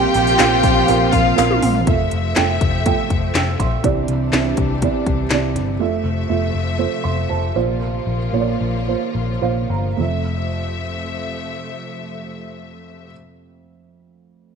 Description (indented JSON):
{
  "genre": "piano-driven pop",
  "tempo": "104-122 BPM",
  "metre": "4/4",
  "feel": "straight",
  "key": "F major",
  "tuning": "A4 = 440 Hz",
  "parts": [
    { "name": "warm chamber violin section", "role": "second line", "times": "0.0-1.9 s", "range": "F4 to G5", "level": "-18 LUFS", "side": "right 1 dB", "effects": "none" },
    { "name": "felt-muted upright piano", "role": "accompaniment", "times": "0.0-14.6 s", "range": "F2 to E6", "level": "-21 LUFS", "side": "right 11 dB", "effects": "none" },
    { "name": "warm studio string section", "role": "sustained chords", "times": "0.0-13.1 s", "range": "C3 to E5", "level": "-25 LUFS", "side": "left 6 dB", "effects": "none" },
    { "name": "vintage muted picked electric bass", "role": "bass", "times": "0.0-13.1 s", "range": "F1 to C2", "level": "-22 LUFS", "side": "left 2 dB", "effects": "none" },
    { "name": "house drum kit", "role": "drums", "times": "0.1-5.7 s", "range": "handclaps, hi-hat, kick drum, snare drum, toms", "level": "-20 LUFS", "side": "left 2 dB", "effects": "none" },
    { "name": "group handclap", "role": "percussion", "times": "0.4-1.5 s", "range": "none", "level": "-27 LUFS", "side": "left 17 dB", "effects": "none" }
  ],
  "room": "light reverb, small room ambience",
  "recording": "1960s-style stereo with parts hard left and right",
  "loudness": "-16 LUFS",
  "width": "side -6 dB against mid",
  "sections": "0.0-1.9 A section; 1.9-10.0 B section; 10.0-14.6 C section",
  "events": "drum fill 1.4-1.9; slowing down 5.8-10.0; felt piano fill 9.1-10.0",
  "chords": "0.0 Bbsus2; 1.9 Fmaj7; 3.8 Cadd9; 5.8 Fmaj7; 7.6 Bbsus2; 10.0 Fmaj7",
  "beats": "0.39 0.88 1.38 | 1.87 2.36 2.85 3.34 | 3.83 4.33 4.82 5.31 | 5.80 6.30 6.79 7.30 | 7.81 8.33 8.87 9.42 | 9.99 10.57 11.15 11.73 | 12.30 12.88 13.46 14.04"
}